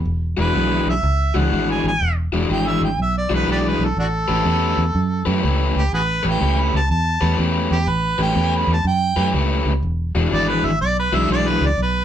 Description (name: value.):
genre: electric blues shuffle.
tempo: 123 BPM.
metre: 4/4.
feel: swing 65% on 8ths.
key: unclear.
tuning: A4 = 440 Hz.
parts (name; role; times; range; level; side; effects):
fingered electric bass; bass; 0.0-12.0 s; E1 to F#2; -20 LUFS; right 1 dB; none.
warm harmonica; melody; 0.4-12.0 s; D4 to B5; -22 LUFS; right 2 dB; overdrive.
overdriven semi-hollow guitar; riff; 0.4-11.7 s; E3 to B4; -21 LUFS; left 3 dB; none.
room: moderate studio reverb, RT60 0.5 s.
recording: band playing live in one room.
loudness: -17 LUFS.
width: side -10 dB against mid.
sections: 0.0-12.0 A section.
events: harmonica solo 0.0-12.0.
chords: 0.1 E9; 4.0 A9; 9.8 E9.